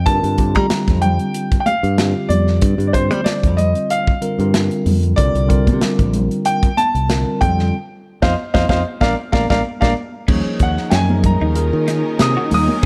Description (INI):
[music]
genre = electric jazz fusion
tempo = 94 BPM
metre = 4/4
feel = swing 54% on 16ths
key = unclear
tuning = A4 = 440 Hz
[part]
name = clear grand piano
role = melody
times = 0.0-12.8 s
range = Bb4 to Eb6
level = -22 LUFS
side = equal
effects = slapback echo
[part]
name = modern bright fingered electric bass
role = bass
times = 0.0-12.9 s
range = Bb1 to G3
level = -20 LUFS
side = equal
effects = none
[part]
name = tine electric piano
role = accompaniment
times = 0.1-12.9 s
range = D3 to Db5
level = -25 LUFS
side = equal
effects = lush chorus
[part]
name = modern studio drum kit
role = drums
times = 0.1-12.9 s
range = crash cymbal, hi-hat, kick drum, snare drum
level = -21 LUFS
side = equal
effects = none
[part]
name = congas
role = percussion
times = 0.6-12.9 s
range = none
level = -27 LUFS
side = equal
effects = none
[part]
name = dark studio string section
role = sustained chords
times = 10.3-12.9 s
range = Eb3 to Bb4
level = -29 LUFS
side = equal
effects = none
[part]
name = clean electric guitar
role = stabs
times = 10.3-12.9 s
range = Db4 to Gb4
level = -30 LUFS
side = equal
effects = subtle chorus
[sound]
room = light reverb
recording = none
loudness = -17 LUFS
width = mono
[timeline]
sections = 0.0-10.3 A section; 10.3-12.9 B section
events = band accent 7.7-10.3; drum fill 9.0-10.3; grand piano solo 10.3-12.9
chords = 0.1 Gm7; 5.2 C9sus4; 7.4 F9; 9.0 Bb7; 10.3 Ebm9